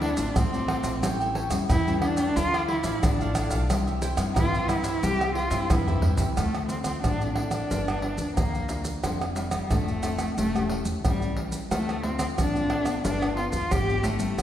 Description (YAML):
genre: samba and choro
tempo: 90 BPM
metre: 4/4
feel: straight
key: D minor from 6.4 s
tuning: A4 = 440 Hz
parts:
  - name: warm cello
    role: melody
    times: 0.0-14.4 s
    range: F3 to G4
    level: -28 LUFS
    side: equal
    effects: none
  - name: cavaquinho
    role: accompaniment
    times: 0.0-6.3 s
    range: E4 to G5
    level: -35 LUFS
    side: right 2 dB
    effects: none
  - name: nylon-string guitar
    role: accompaniment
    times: 0.0-14.4 s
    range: G2 to A4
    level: -32 LUFS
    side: left 2 dB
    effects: none
  - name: upright bass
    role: bass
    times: 0.0-14.4 s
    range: E1 to G2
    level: -32 LUFS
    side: equal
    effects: none
  - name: pandeiro, maracas, surdo and tamborim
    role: percussion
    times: 0.0-14.4 s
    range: none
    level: -27 LUFS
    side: right 1 dB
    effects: none
room: wet recital hall reverb, RT60 1.4 s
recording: recorded in a church or concert hall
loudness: -23 LUFS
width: side -11 dB against mid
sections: 0.0-6.4 A section; 6.4-14.4 B section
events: cello solo 0.0-6.4; drum fill 5.7-6.4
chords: 0.0 Dm7; 1.0 A7; 2.4 Dmadd9; 3.7 C; 6.4 Dm7; 7.7 Gm7; 9.0 Dm7/F; 10.4 A7/E; 11.7 Dm7; 13.0 G7